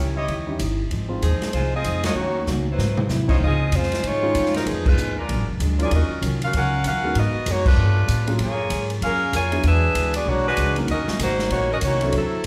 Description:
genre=jazz, big band swing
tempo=192 BPM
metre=4/4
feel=swing 62% on 8ths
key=Ab major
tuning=A4 = 439 Hz
part: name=bright saxophone section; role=melody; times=0.0-12.5 s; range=F3 to Ab5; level=-26 LUFS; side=equal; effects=none
part: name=picked plugged-in steel-string acoustic guitar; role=accompaniment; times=0.0-12.3 s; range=Ab2 to Bb4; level=-33 LUFS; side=equal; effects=none
part: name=upright bass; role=bass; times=0.0-12.5 s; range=F1 to A2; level=-26 LUFS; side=equal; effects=none
part: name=clear trumpet section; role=stabs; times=0.2-3.4 s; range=Fb4 to Eb5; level=-33 LUFS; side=equal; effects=none
part: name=swinging big-band drum kit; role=drums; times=0.3-12.5 s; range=crash cymbal, hi-hat, kick drum, ride cymbal, snare drum, toms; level=-29 LUFS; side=equal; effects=none
part: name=warm concert grand piano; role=accompaniment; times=0.5-12.1 s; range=Eb3 to Bb4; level=-31 LUFS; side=equal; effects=none
room=moderate recital hall reverb, RT60 1.3 s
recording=recorded in a church or concert hall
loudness=-21 LUFS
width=mono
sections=0.0-3.4 A section; 3.4-12.5 B section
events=band accent 2.0, 4.8, 7.6; drum fill 2.5-3.1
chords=0.0 Eb7b9; 0.9 Ab6; 2.2 Ebm7; 2.8 Ab7alt; 3.4 Dbmaj9; 4.7 Fm7b5; 5.3 Bb7b13; 5.9 Ebm9; 7.2 Abm9; 7.8 G9; 8.4 Gbmaj9; 9.6 E9; 10.9 Ebm7

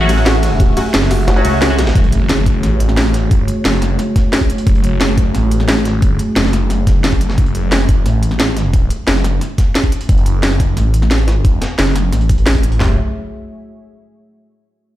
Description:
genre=dark technical drum and bass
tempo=177 BPM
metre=4/4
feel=straight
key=F# minor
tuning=A4 = 437 Hz
part: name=dark analog pad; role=sustained chords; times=0.0-13.0 s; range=A3 to E5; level=-23 LUFS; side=right 1 dB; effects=chorus, sidechain pumping
part: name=band-passed chord stab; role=stabs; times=0.0-1.8 s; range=F#3 to F#4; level=-20 LUFS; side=left 1 dB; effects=phaser, ping-pong delay
part: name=phased detuned saw bass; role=bass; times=0.0-13.0 s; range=F#1 to C#2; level=-15 LUFS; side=equal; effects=phaser, overdrive, sidechain pumping
part: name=felt-muted upright piano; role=arpeggios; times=0.1-1.8 s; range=F#4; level=-22 LUFS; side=equal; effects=sidechain pumping, ping-pong delay
part: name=breakbeat sampler-style drum kit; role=drums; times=0.1-12.8 s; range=hi-hat, snare drum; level=-27 LUFS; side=equal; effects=high-pass filter on snare, high-pass filter on hats
part: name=drum and bass drum kit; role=drums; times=0.1-12.7 s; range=hi-hat, ride cymbal, snare drum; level=-18 LUFS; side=equal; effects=none
part: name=drum and bass drum kit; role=drums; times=0.6-12.9 s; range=handclaps, kick drum, snare drum, toms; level=-14 LUFS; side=equal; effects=none
part: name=vowel-sweep wobble bass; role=bass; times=1.3-1.4 s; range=F#1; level=-13 LUFS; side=equal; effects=chorus
part: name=impact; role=sound effects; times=2.0-3.3 s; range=none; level=-22 LUFS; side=equal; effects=none
room=little or no reverb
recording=played on a big sound system in a bare room, large studio reverb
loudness=-11 LUFS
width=side -14 dB against mid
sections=0.0-2.0 A section; 2.0-12.8 B section; 12.8-14.2 C section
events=drop 0.0-2.0; kick drops out 1.3-2.0; impact 2.0-3.3; filter sweep on detuned saw bass 2.0-12.8; filter sweep on analog synth pad 2.0-12.8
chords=0.0 F#madd9

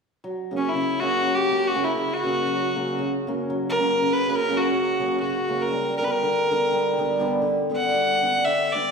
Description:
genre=balkan folk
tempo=free time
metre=none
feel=none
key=F# phrygian dominant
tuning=A4 = 440 Hz
part: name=hammered dulcimer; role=accompaniment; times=0.2-8.9 s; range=C#3 to D4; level=-24 LUFS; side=equal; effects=none
part: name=rich fiddle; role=melody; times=0.6-8.9 s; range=C#4 to F#5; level=-23 LUFS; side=equal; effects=none
room=wet recital hall reverb, RT60 1.5 s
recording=heard from further back in the room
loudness=-20 LUFS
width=side -5 dB against mid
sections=0.2-8.9 A section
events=none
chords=0.2 F#; 5.7 G

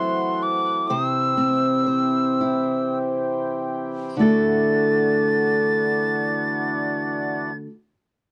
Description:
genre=celtic folk, Celtic slow air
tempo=31-46 BPM (dotted quarters)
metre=6/8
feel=rubato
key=D mixolydian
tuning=A4 = 439 Hz
part: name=mellow wooden whistle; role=melody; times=0.0-7.6 s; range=C6 to A6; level=-26 LUFS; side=equal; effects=none
part: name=fingerpicked steel-string acoustic guitar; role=accompaniment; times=0.0-7.7 s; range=C3 to C5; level=-24 LUFS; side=equal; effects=none
part: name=mellow accordion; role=sustained chords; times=0.0-7.5 s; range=E3 to G4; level=-32 LUFS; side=equal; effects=none
room=little or no reverb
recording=dry, close 1970s-style studio recording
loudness=-22 LUFS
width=mono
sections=0.0-4.2 A section; 4.2-7.9 B section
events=slowing down 0.0-4.2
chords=0.0 F#m7b5; 0.9 C; 4.2 Dadd9

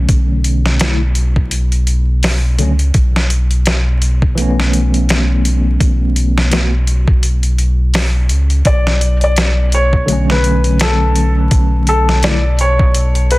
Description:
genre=trip hop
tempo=84 BPM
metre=4/4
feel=swing 57% on 16ths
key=B minor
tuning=A4 = 439 Hz
part: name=tine electric piano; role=accompaniment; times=0.0-12.4 s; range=D3 to F#4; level=-19 LUFS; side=equal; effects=medium stereo tremolo, vintage 12-bit sampler grit, tape echo
part: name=round analog bass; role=bass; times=0.0-13.4 s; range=B1 to C#2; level=-13 LUFS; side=equal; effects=none
part: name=dusty soul sampler-style drum kit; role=drums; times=0.1-13.4 s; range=hi-hat, kick drum, snare drum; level=-16 LUFS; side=equal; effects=studio reverb
part: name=felt-muted upright piano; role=melody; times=8.7-13.4 s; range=A4 to D5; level=-17 LUFS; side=left 1 dB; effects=tape echo
room=little or no reverb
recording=dense, heavily limited modern master, vinyl crackle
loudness=-11 LUFS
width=side -20 dB against mid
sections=0.0-13.4 A section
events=none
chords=0.0 Bm7; 2.9 Aadd9/B; 8.7 Bm7

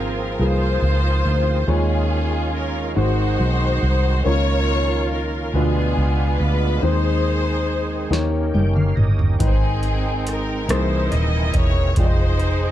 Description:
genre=slow gospel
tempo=47 BPM (dotted quarters)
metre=6/8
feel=straight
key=Ab major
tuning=A4 = 439 Hz
part: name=rich studio string section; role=melody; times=0.0-12.7 s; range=B3 to D#5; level=-24 LUFS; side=left 1 dB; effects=slapback echo
part: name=clear grand piano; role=accompaniment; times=0.0-12.7 s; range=Ab2 to G5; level=-27 LUFS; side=left 4 dB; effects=none
part: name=overdriven tonewheel organ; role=sustained chords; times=0.0-12.7 s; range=Eb3 to G5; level=-28 LUFS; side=right 3 dB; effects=slow rotary speaker, chorus vibrato
part: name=vintage muted fingered electric bass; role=bass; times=0.0-12.7 s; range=D#1 to Eb2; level=-20 LUFS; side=equal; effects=none
part: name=booming analog drum machine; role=drums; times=8.1-12.6 s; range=hi-hat, kick drum, rim click, snare drum, toms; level=-21 LUFS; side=equal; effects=none
room=little or no reverb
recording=dark, warm production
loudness=-17 LUFS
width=side -12 dB against mid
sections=0.0-12.7 A section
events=drum fill 8.1-9.4; tonewheel organ fill 8.1-9.4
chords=0.0 Ab69; 1.7 Eb9sus4; 3.0 Ab7; 4.3 Db69; 5.5 Ddim7; 6.8 Ab/Eb; 8.1 Eb7; 9.4 Abmaj7; 10.7 C7alt; 12.0 Fm9

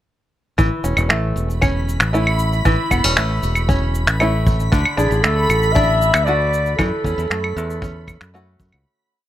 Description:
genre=folktronica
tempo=116 BPM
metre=4/4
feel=straight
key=A major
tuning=A4 = 437 Hz
part: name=open-back banjo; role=arpeggios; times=0.6-9.3 s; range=D3 to F#4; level=-22 LUFS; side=equal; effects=plate reverb, ping-pong delay
part: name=fingered electric bass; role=bass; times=0.6-8.8 s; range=E1 to F#2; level=-20 LUFS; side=equal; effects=none
part: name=cabasa, claves and finger snaps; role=drums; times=0.6-8.8 s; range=none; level=-20 LUFS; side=equal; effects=none
part: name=kick drum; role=drums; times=0.6-8.7 s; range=none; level=-20 LUFS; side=equal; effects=none
part: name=backwards swelling texture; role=texture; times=1.7-8.9 s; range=B5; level=-26 LUFS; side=right 1 dB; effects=built-in reverb, plate reverb
part: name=growling clarinet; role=melody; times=5.0-8.5 s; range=G#4 to E5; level=-20 LUFS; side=left 1 dB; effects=plate reverb
room=light reverb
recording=none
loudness=-15 LUFS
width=side -12 dB against mid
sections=0.6-8.9 groove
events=fade-out 6.1-8.9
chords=0.6 A; 4.7 D; 6.8 F#m7

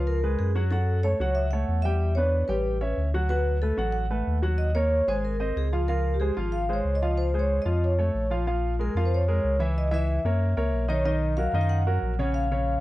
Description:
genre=Afro-Cuban jazz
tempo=186 BPM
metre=4/4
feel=straight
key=Bb minor from 8.5 s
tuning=A4 = 438 Hz
part: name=warm concert grand piano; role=accompaniment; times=0.0-12.8 s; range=Db3 to Ab5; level=-29 LUFS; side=equal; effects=none
part: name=sub bass with octave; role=bass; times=0.0-12.8 s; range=Ab1 to Gb2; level=-25 LUFS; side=equal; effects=none
part: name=vibraphone with medium mallets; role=melody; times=0.1-12.8 s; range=G4 to Gb5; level=-29 LUFS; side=equal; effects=none
room=little or no reverb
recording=dry, close 1970s-style studio recording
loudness=-23 LUFS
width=side -16 dB against mid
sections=0.0-8.5 A section; 8.5-12.8 B section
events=none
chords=0.1 Db7; 0.7 Gbm7; 2.0 Em7; 2.7 A9; 3.3 D6; 4.6 Ebm7; 5.2 Ab69; 5.9 Dbmaj7; 7.8 F; 8.5 Bbm7; 9.8 Dbm; 10.4 Gb7; 11.1 Bmaj7

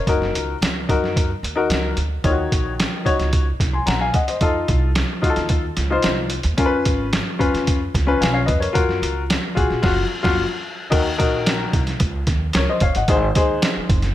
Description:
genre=uptempo 1960s-style soul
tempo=111 BPM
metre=4/4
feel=straight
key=unclear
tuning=A4 = 440 Hz
part: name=clear upright piano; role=accompaniment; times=0.0-14.0 s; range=Ab2 to C6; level=-21 LUFS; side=left 3 dB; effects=none
part: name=upright bass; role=bass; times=0.1-14.1 s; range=Gb1 to Gb2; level=-24 LUFS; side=right 1 dB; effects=none
part: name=lo-fi sampler-style drum kit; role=drums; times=0.1-14.1 s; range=crash cymbal, hi-hat, kick drum, snare drum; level=-20 LUFS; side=right 1 dB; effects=overdrive
room=light reverb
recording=none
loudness=-17 LUFS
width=side -13 dB against mid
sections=0.0-10.9 A section; 10.9-14.1 B section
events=band accent 9.8-10.9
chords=0.1 Gb6; 2.2 Ebm7; 4.4 F7; 6.6 Db7; 8.8 Gbmaj7; 10.9 Ebm; 13.1 Ab

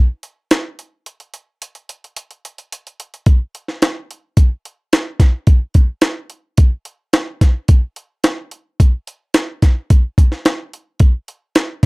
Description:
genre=rock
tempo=109 BPM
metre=4/4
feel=straight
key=none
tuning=none
part: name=jungle sampler-style drum kit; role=drums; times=0.2-11.9 s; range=hi-hat, kick drum, snare drum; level=-12 LUFS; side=equal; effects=none
room=little or no reverb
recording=dry, close 1970s-style studio recording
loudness=-14 LUFS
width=side -29 dB against mid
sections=0.0-3.3 A section; 3.3-11.9 B section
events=break 1.1-3.3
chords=none

